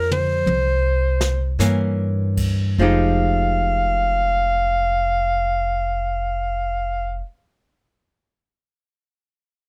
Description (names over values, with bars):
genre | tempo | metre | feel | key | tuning
jazz ballad | 48-56 BPM | 4/4 | swing 66% on 8ths | F minor | A4 = 440 Hz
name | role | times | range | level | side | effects
clear clarinet | melody | 0.0-7.2 s | C5 to F5 | -23 LUFS | equal | none
archtop guitar, miked and amplified | accompaniment | 0.0-7.3 s | E3 to G4 | -26 LUFS | equal | none
upright bass | bass | 0.0-7.2 s | F1 to G2 | -24 LUFS | equal | none
jazz brush drum kit | drums | 0.1-2.6 s | crash cymbal, hi-hat, kick drum, snare drum, toms | -29 LUFS | equal | none
room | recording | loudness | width
little or no reverb | close, detailed microphones | -20 LUFS | mono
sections
0.0-2.8 A section; 2.8-7.7 B section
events
drum fill 0.0-1.6; slowing down 0.0-2.8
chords
0.5 C7b9; 2.8 Fm9